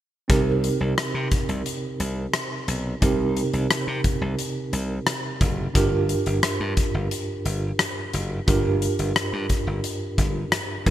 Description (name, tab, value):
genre	1980s-style pop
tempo	88 BPM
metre	4/4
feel	straight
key	C minor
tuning	A4 = 441 Hz
part	tine electric piano	accompaniment	0.3-10.9 s	G2 to Bb4	-26 LUFS	right 2 dB	fast tremolo
part	glassy slap bass	bass	0.3-10.9 s	F#1 to C3	-26 LUFS	equal	none
part	big rock drum kit	drums	0.3-10.9 s	hi-hat, kick drum, rim click	-24 LUFS	left 1 dB	none
room	moderate plate reverb, RT60 3.1 s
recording	bright 1980s-style digital production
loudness	-21 LUFS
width	side -12 dB against mid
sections	0.3-10.9 A section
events	none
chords	0.3 Cm7; 5.7 Gm7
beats	| 0.29 0.98 1.66 2.34 | 3.02 3.70 4.39 5.07 | 5.75 6.43 7.11 7.79 | 8.48 9.16 9.84 10.52